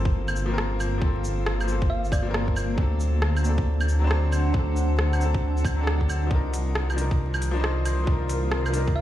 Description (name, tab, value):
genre	future garage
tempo	136 BPM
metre	4/4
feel	swing 64% on 16ths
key	G minor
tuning	A4 = 440 Hz
part	bright upright piano	accompaniment	0.0-9.0 s	F3 to C5	-30 LUFS	left 2 dB	vintage 12-bit sampler grit, sidechain pumping, ping-pong delay
part	granular cloud pad	sustained chords	0.3-9.0 s	Eb3 to F#5	-33 LUFS	right 1 dB	built-in reverb, sidechain pumping
part	dark detuned saw bass	bass	0.0-9.0 s	G1 to D2	-24 LUFS	equal	sidechain pumping
part	impact	sound effects	0.0-1.0 s	none	-40 LUFS	equal	none
part	electronic kick drum	drums	0.1-8.9 s	none	-24 LUFS	equal	none
part	organic electronic drum kit	drums	0.3-8.8 s	claves, hi-hat, rim click, shaker	-31 LUFS	right 1 dB	none
part	thumb-piano-like synth pluck	melody	1.9-2.8, 9.0 s	D5 to F5	-35 LUFS	right 1 dB	chorus, ping-pong delay
room	digital ambience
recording	played on a big sound system in a bare room, stone room reverb, vinyl crackle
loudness	-22 LUFS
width	side -13 dB against mid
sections	0.0-9.0 A section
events	impact 0.0-1.0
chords	0.0 Gm11; 2.8 D7; 6.3 Cm11